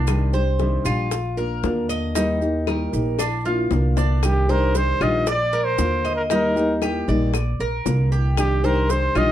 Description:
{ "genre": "latin, Cuban son and guajira", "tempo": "116 BPM", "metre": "4/4", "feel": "straight", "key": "C minor", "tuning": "A4 = 444 Hz", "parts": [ { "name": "nylon-string guitar", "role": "accompaniment", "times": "0.0-9.3 s", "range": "C3 to G4", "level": "-25 LUFS", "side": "left 2 dB", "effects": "none" }, { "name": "Cuban tres", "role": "arpeggios", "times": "0.0-9.3 s", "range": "D4 to Eb5", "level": "-25 LUFS", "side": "right 1 dB", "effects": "none" }, { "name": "upright bass", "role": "bass", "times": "0.0-9.3 s", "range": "Bb1 to Eb2", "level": "-22 LUFS", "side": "right 1 dB", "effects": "none" }, { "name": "bongos", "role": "percussion", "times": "0.1-9.3 s", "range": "none", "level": "-29 LUFS", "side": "left 8 dB", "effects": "none" }, { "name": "claves", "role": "percussion", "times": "0.1-9.3 s", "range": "none", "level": "-35 LUFS", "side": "left 12 dB", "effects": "none" }, { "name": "maracas", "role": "percussion", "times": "0.1-9.3 s", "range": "none", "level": "-35 LUFS", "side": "right 7 dB", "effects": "none" }, { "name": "breathy trumpet", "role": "melody", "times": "4.2-9.3 s", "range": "G4 to Eb5", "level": "-22 LUFS", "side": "equal", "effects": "plate reverb" } ], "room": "light reverb", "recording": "dark, warm production", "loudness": "-18 LUFS", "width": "side -12 dB against mid", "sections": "0.0-4.2 A section; 4.2-9.3 B section", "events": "drum fill 3.2-4.2", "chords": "0.1 Cmadd9; 1.1 Bb; 2.2 Eb; 3.2 Bb; 4.2 Cmadd9; 5.3 Bb; 6.3 Eb; 7.3 Bb; 8.4 Cmadd9", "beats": "| 0.07 0.59 1.11 1.63 | 2.15 2.67 3.19 3.71 | 4.23 4.75 5.27 5.79 | 6.30 6.82 7.34 7.86 | 8.38 8.89" }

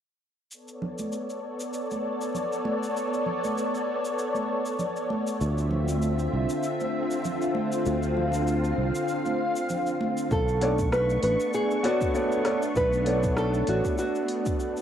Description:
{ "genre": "sunset chillout", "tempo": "98 BPM", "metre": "4/4", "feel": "swing 56% on 16ths", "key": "unclear", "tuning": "A4 = 441 Hz", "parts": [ { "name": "soft string machine", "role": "sustained chords", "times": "0.7-14.8 s", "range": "D3 to C#6", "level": "-28 LUFS", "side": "equal", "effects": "ensemble chorus, cassette tape" }, { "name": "deep house drum kit", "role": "drums", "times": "0.5-14.8 s", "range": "cabasa, hi-hat, rim click", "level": "-40 LUFS", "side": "equal", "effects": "cassette tape" }, { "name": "congas", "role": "percussion", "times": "0.8-10.1 s", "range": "none", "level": "-35 LUFS", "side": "right 2 dB", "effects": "none" }, { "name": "fingered electric bass", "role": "bass", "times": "5.4-13.8 s", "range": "A1 to D2", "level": "-27 LUFS", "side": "equal", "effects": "none" }, { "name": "nylon-string guitar", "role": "melody", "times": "10.3-14.8 s", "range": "F#4 to B4", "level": "-27 LUFS", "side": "right 1 dB", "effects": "cassette tape, analog delay" }, { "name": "electronic kick drum", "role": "drums", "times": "10.3-14.6 s", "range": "none", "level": "-30 LUFS", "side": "equal", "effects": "cassette tape" }, { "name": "warm baby grand piano", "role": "accompaniment", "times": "10.6-14.8 s", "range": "B3 to D5", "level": "-29 LUFS", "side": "equal", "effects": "auto-pan, cassette tape" } ], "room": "wet studio reverb, RT60 0.6 s", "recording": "home recording on cassette", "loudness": "-24 LUFS", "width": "side -9 dB against mid", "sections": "0.5-10.3 A section; 10.3-14.8 B section", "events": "none", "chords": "0.5 Bm9; 5.4 Dm9; 10.3 Bm9", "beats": "| 0.52 1.13 1.74 2.35 | 2.96 3.58 4.19 4.80 | 5.41 6.03 6.64 7.25 | 7.86 8.47 9.09 9.70 | 10.31 10.92 11.54 12.15 | 12.76 13.37 13.98 14.60" }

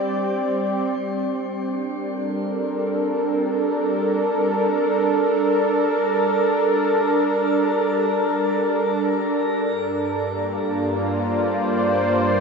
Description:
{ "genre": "ambient", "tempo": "free time", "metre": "none", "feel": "none", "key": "G minor", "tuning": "A4 = 440 Hz", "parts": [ { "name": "warm analog pad", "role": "sustained chords", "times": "0.0-12.4 s", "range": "G2 to D5", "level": "-19 LUFS", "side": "right 1 dB", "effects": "chorus, shimmer reverb" }, { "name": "analog drone", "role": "drone", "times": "6.4-12.4 s", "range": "G3 to D4", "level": "-34 LUFS", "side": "left 1 dB", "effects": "none" } ], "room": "wet cathedral reverb, RT60 6.4 s", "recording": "cassette tape, nothing above 7.7 kHz", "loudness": "-19 LUFS", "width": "side -4 dB against mid", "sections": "1.0-12.4 A section", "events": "none", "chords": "0.0 Gmadd9; 9.6 Bb/G", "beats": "free time" }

